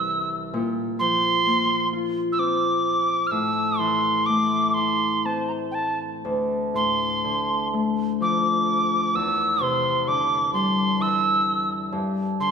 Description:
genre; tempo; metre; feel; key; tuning
celtic folk, Celtic slow air; 63 BPM; 3/4; uneven beats, rubato; D minor; A4 = 436 Hz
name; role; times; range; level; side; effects
wooden whistle; melody; 0.0-12.5 s; G5 to F6; -22 LUFS; right 2 dB; none
Celtic harp; accompaniment; 0.0-12.5 s; C2 to F4; -25 LUFS; left 2 dB; none
room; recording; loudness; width
wet scoring stage reverb, RT60 1.8 s; recorded in a church or concert hall; -20 LUFS; side -6 dB against mid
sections
0.0-12.5 A section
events
none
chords
0.0 C; 0.5 Bbsus2; 3.3 Am; 6.2 Dm7; 9.1 Cadd9/E; 11.9 G5

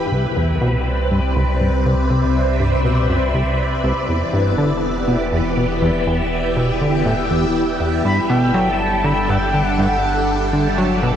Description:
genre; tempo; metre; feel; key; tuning
ambient, sequencer-driven space music; 121 BPM; 4/4; straight; unclear; A4 = 440 Hz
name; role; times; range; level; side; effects
phased string machine; sustained chords; 0.0-11.2 s; C3 to B5; -20 LUFS; equal; ensemble chorus, phaser
warm sub bass; bass; 0.0-11.2 s; E1 to C2; -23 LUFS; equal; none
plucky analog bass; riff; 0.1-11.1 s; C2 to F#3; -20 LUFS; equal; ping-pong delay
expressive synth lead; melody; 8.1-10.7 s; F#5 to B5; -21 LUFS; equal; chorus, ping-pong delay
room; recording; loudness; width
wet huge ambient reverb, RT60 8.2 s; worn, warbling old tape, cassette tape, warbly pitch drift; -15 LUFS; side -9 dB against mid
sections
0.1-11.2 A section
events
none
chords
0.1 Cmaj7; 4.1 Em7; 8.1 Gmaj7

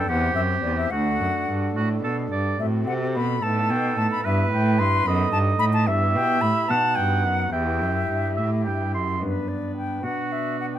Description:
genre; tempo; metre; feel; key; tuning
classical, baroque-style sonata movement with continuo; 73 BPM (dotted quarters); 6/8; straight; E minor; A4 = 439 Hz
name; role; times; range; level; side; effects
bright concert flute; melody; 0.0-10.8 s; B4 to C6; -26 LUFS; left 4 dB; none
clear oboe; second line; 0.0-10.8 s; F#4 to C6; -26 LUFS; right 5 dB; none
pipe organ, foundations; accompaniment; 0.0-10.8 s; D2 to C5; -29 LUFS; right 1 dB; none
rich cello; bass; 0.0-10.8 s; D2 to C3; -24 LUFS; right 1 dB; none
room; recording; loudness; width
light reverb; none; -20 LUFS; side -11 dB against mid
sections
0.0-9.2 A section; 9.2-10.8 A section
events
none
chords
0.1 C/E; 0.9 D; 2.6 F#dim/A; 3.4 B7/A; 4.2 Em/G; 5.1 B7/F#; 5.9 Em/G; 6.7 B; 7.5 Em; 9.2 G; 10.0 Bm

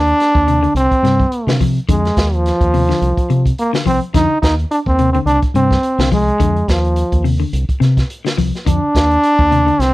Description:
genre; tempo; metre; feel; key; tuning
afrobeat; 106 BPM; 4/4; swing 55% on 16ths; unclear; A4 = 440 Hz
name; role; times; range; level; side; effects
brilliant trombone; melody; 0.0-9.9 s; F3 to Eb4; -15 LUFS; right 1 dB; none
deep dub fingered electric bass; bass; 0.0-9.9 s; C2 to C3; -16 LUFS; equal; none
crunchy breakbeat drum kit; drums; 0.1-9.9 s; hi-hat, kick drum, snare drum; -19 LUFS; equal; none
clean electric guitar; arpeggios; 0.5-9.8 s; C3 to F3; -19 LUFS; left 5 dB; none
room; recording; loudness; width
light reverb; dry, close 1970s-style studio recording; -12 LUFS; side -18 dB against mid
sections
0.0-9.9 A section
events
none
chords
0.0 N.C.; 0.8 Csus4; 1.9 F5; 3.0 Csus4; 4.1 N.C.; 5.3 Csus4; 6.4 F5; 7.5 Csus4; 8.7 N.C.

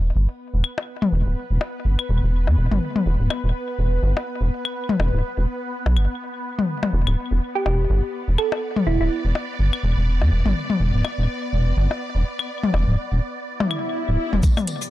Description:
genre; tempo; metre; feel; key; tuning
minimal techno; 124 BPM; 4/4; swing 57% on 16ths; E minor; A4 = 439 Hz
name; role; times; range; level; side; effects
rubbery square bass; bass; 0.0-14.9 s; D1 to E2; -19 LUFS; equal; sidechain pumping, high-pass filter
swarming drone; texture; 0.1-14.9 s; B3 to D5; -30 LUFS; equal; built-in reverb, phaser, sidechain pumping
electronic claves, percussion blips and toms; percussion; 0.6-14.7 s; none; -24 LUFS; left 4 dB; ping-pong delay
thumb-piano-like synth pluck; melody; 7.6-9.1 s; E4 to A4; -24 LUFS; right 4 dB; chorus, phaser, ping-pong delay
swell and riser; sound effects; 13.6-14.9 s; none; -27 LUFS; equal; none
electronic kick drum; drums; 14.4-14.5 s; none; -16 LUFS; equal; none
tambourine and hi-hat; drums; 14.4-14.9 s; none; -36 LUFS; left 4 dB; sidechain pumping on hats, high-pass filter on hats, high-pass filter on snare, sidechain pumping on perc, high-pass filter on perc, high-pass filter on room
cabasa; percussion; 14.4-14.9 s; none; -33 LUFS; left 5 dB; none
electronic hi-hat; drums; 14.7-14.8 s; none; -29 LUFS; right 2 dB; none
room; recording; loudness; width
light reverb; dark, warm production; -20 LUFS; side -15 dB against mid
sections
0.0-14.4 A section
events
swell 13.6-14.4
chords
0.0 E5

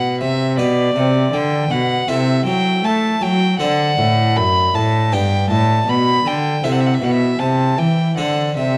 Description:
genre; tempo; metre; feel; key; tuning
classical, baroque-style sonata movement with continuo; 79 BPM; 4/4; rubato; G major; A4 = 442 Hz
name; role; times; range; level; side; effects
warm violin; melody; 0.0-8.8 s; D5 to B5; -22 LUFS; equal; none
harpsichord; accompaniment; 0.0-8.8 s; F#2 to B4; -25 LUFS; equal; none
rich cello; bass; 0.0-8.8 s; F#2 to A3; -20 LUFS; equal; none
room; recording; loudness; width
moderate recital hall reverb, RT60 1.4 s; close, detailed microphones; -17 LUFS; mono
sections
0.0-8.8 A section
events
none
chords
0.0 Em; 0.6 G/B; 2.1 Am/C; 3.6 D7; 5.1 G; 6.6 Am; 8.2 D5

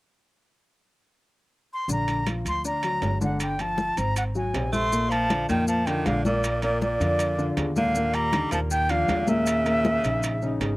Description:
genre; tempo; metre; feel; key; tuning
Afro-Cuban jazz; 158 BPM; 4/4; straight; Bb major; A4 = 436 Hz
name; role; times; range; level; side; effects
breathy bright concert flute; melody; 1.7-10.5 s; D5 to C6; -26 LUFS; equal; none
warm concert grand piano; accompaniment; 1.9-10.7 s; Bb2 to D5; -28 LUFS; left 1 dB; none
upright bass; bass; 1.9-10.8 s; G1 to F2; -29 LUFS; equal; none
congas; percussion; 1.9-10.8 s; none; -30 LUFS; left 2 dB; none
maracas; percussion; 1.9-10.8 s; none; -38 LUFS; left 2 dB; none
timbales; percussion; 2.1-10.8 s; none; -35 LUFS; right 3 dB; none
edgy tenor saxophone; second line; 4.7-10.5 s; Bb2 to A3; -31 LUFS; right 2 dB; slapback echo
room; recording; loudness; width
little or no reverb; recorded outdoors, with no room sound; -22 LUFS; side -20 dB against mid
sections
0.4-1.9 A section; 1.9-4.9 B section; 4.9-10.8 C section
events
none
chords
0.4 N.C.; 1.9 Bb; 2.6 D; 3.4 G9sus4; 4.2 Ab9; 4.9 Bbmaj7; 6.4 Bb; 8.0 Ebmaj9; 9.5 Eb5

